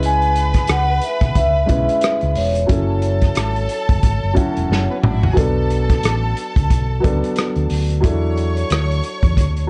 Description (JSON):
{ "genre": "lush 1970s-style soul", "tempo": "90 BPM", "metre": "4/4", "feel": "swing 58% on 16ths", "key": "B dorian", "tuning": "A4 = 445 Hz", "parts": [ { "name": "clear studio violin section", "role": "second line", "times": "0.0-9.7 s", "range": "B3 to C#6", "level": "-30 LUFS", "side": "equal", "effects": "analog delay" }, { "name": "dark baby grand piano", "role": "accompaniment", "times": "0.0-9.7 s", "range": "F#3 to B4", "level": "-26 LUFS", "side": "equal", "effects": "none" }, { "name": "fingered electric bass", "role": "bass", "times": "0.0-9.7 s", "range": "E1 to E2", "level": "-22 LUFS", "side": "equal", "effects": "none" }, { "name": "vintage drum kit", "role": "drums", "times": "0.0-9.7 s", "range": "hi-hat, kick drum, rim click, snare drum, toms", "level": "-21 LUFS", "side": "equal", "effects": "vintage 12-bit sampler grit" }, { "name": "vibraphone with soft mallets", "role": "melody", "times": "0.1-5.0 s", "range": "C#5 to G#5", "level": "-23 LUFS", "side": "equal", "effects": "analog delay" } ], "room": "light reverb", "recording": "cassette tape, nothing above 11.0 kHz", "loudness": "-17 LUFS", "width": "mono", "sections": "0.0-9.7 A section", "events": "drum fill 4.7-5.4", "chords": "0.0 C#m7; 2.7 F#m7; 5.4 Bm7; 8.0 E9sus4" }